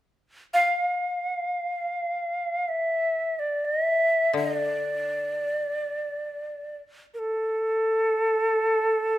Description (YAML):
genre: japanese traditional, Japanese chamber music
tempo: free time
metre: none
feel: none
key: D hirajoshi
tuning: A4 = 439 Hz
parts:
  - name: breathy bright shakuhachi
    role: melody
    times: 0.5-9.2 s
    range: A4 to F5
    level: -24 LUFS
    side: equal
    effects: none
  - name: koto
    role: accompaniment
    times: 4.3-7.6 s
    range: D3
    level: -30 LUFS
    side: left 4 dB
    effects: none
room: moderate recital hall reverb, RT60 1.4 s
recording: none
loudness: -23 LUFS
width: side -14 dB against mid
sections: 0.0-9.2 A section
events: none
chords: none